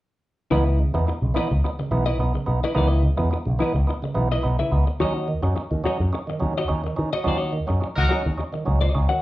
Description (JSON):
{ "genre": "funk", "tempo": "107 BPM", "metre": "4/4", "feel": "straight", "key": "C# minor", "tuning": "A4 = 440 Hz", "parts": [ { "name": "clean electric guitar", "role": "accompaniment", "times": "0.5-9.2 s", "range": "E4 to F#5", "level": "-27 LUFS", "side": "left 2 dB", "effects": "none" }, { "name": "percussive tonewheel organ", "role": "stabs", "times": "0.5-9.2 s", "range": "C#3 to D#4", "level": "-27 LUFS", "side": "right 3 dB", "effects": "overdrive" }, { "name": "picked electric bass with an envelope filter", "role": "bass", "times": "0.5-9.1 s", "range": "B1 to D#3", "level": "-22 LUFS", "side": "equal", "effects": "none" }, { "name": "clear horn section", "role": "second line", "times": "8.0-8.1 s", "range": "D#4 to A#4", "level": "-25 LUFS", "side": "left 2 dB", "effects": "none" } ], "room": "moderate large studio reverb, RT60 0.8 s", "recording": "band playing live in one room, cassette tape", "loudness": "-20 LUFS", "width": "side -16 dB against mid", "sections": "0.5-9.2 A section", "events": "band accent 7.3-9.2", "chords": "0.5 C#m9; 5.0 D#m7" }